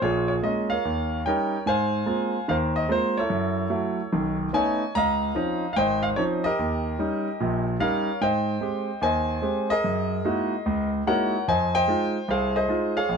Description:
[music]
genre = solo jazz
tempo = 147 BPM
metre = 4/4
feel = swing 66% on 8ths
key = Ab major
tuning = A4 = 444 Hz
[part]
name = clear concert grand piano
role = solo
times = 0.0-13.2 s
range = Ab1 to Bb5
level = -22 LUFS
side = equal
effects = none
[sound]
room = light reverb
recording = close, detailed microphones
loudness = -22 LUFS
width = side -6 dB against mid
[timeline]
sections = 0.0-1.7 A section; 1.7-13.2 B section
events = none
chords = 0.0 Bbm7; 0.8 Eb7; 1.7 Ab69; 3.3 Gbm7; 4.1 B9; 4.9 Dbmaj9; 6.6 Eb7; 8.2 Abmaj7; 9.8 Gb13; 11.5 Fm7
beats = | 0.03 0.44 0.85 1.26 | 1.67 2.08 2.49 2.90 | 3.30 3.71 4.12 4.53 | 4.94 5.35 5.76 6.16 | 6.57 6.98 7.39 7.79 | 8.20 8.61 9.02 9.43 | 9.83 10.24 10.65 11.05 | 11.46 11.87 12.28 12.69 | 13.09

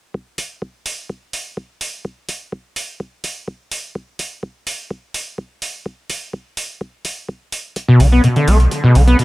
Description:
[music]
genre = acid house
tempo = 126 BPM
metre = 4/4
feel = straight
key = B minor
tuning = A4 = 440 Hz
[part]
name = electronic kick drum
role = drums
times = 0.1-9.2 s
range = none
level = -28 LUFS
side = equal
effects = high-pass filter on kick
[part]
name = electronic hi-hat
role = drums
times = 0.4-9.2 s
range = none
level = -25 LUFS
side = right 2 dB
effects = none
[part]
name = acid bass, saw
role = riff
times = 7.9-9.2 s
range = B2 to B3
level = -11 LUFS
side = equal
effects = overdrive, lush chorus, tape echo
[part]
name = round analog bass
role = bass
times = 8.0-9.2 s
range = B1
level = -11 LUFS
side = equal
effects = tube saturation, sidechain pumping
[sound]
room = light reverb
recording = echo-heavy mix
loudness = -17 LUFS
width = side -19 dB against mid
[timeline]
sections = 0.1-9.2 A section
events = none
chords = none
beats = | 0.14 0.62 1.10 1.57 | 2.05 2.52 3.00 3.48 | 3.95 4.43 4.91 5.38 | 5.86 6.33 6.81 7.29 | 7.76 8.24 8.71 9.19

